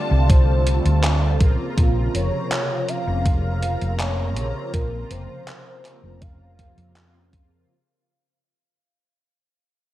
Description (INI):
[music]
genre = vaporwave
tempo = 81 BPM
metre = 4/4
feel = straight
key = unclear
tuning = A4 = 441 Hz
[part]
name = warm velvety synth lead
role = melody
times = 0.0-7.3 s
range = Bb4 to F5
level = -30 LUFS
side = equal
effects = chorus, tape echo
[part]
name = mellow synth brass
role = accompaniment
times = 0.0-7.7 s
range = C3 to F4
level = -28 LUFS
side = right 1 dB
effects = phaser, analog chorus
[part]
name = dark studio string section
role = sustained chords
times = 0.0-7.7 s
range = D4 to Bb5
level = -35 LUFS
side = left 1 dB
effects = none
[part]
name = hollow-body short-scale fingered electric bass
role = bass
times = 0.1-7.6 s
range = F1 to F2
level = -20 LUFS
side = equal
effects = none
[part]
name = electronic kick drum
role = drums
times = 0.3-7.5 s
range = none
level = -17 LUFS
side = equal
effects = none
[part]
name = gated 80s digital drum machine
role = drums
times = 0.3-7.5 s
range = handclaps, hi-hat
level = -28 LUFS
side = equal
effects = gated reverb
[sound]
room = light reverb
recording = none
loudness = -18 LUFS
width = side -15 dB against mid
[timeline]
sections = 0.0-7.7 A section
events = fade-out 0.0-7.7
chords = 0.0 F69; 1.4 Bbmadd9